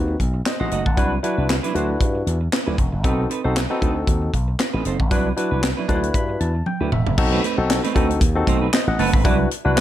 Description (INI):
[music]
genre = early-eighties boogie funk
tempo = 116 BPM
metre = 4/4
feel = swing 56% on 16ths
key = unclear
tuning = A4 = 440 Hz
[part]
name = barky tine electric piano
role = accompaniment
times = 0.0-9.8 s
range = C4 to B5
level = -24 LUFS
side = left 3 dB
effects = overdrive
[part]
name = slap bass with an envelope filter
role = bass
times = 0.0-9.8 s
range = E1 to G2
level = -22 LUFS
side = equal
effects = none
[part]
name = semi-hollow electric guitar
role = riff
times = 0.1-9.8 s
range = F#3 to D#5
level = -26 LUFS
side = right 8 dB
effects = lush chorus
[part]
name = tight funk drum kit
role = drums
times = 0.2-9.8 s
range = crash cymbal, handclaps, hi-hat, kick drum, snare drum, toms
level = -21 LUFS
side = equal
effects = gated reverb
[sound]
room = small room ambience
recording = none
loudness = -18 LUFS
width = side -12 dB against mid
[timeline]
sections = 0.0-7.2 A section; 7.2-9.8 B section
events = tine electric piano fill 5.6-7.2; drum fill 6.7-7.2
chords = 0.0 B7b9; 1.0 Cmaj9#11; 3.0 B7b9; 5.1 Cmaj9#11; 7.2 B7b9; 9.2 Cmaj9#11